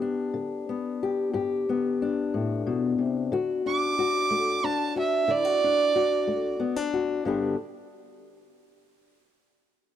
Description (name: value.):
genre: acoustic country blues, solo or duo.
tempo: 61 BPM (dotted quarters).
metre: 12/8.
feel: straight.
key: G major.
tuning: A4 = 440 Hz.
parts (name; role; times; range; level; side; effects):
fingerpicked old ladder-braced acoustic guitar; accompaniment; 0.0-7.6 s; G2 to G4; -26 LUFS; left 5 dB; none.
dark fiddle; melody; 3.7-6.6 s; D5 to D6; -24 LUFS; right 5 dB; none.
room: light reverb, small room reverb.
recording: dry, close 1970s-style studio recording.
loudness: -24 LUFS.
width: side -10 dB against mid.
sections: 0.0-7.2 A section; 7.2-10.0 B section.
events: fiddle solo 0.0-7.2.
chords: 0.0 G; 3.3 D; 7.2 G.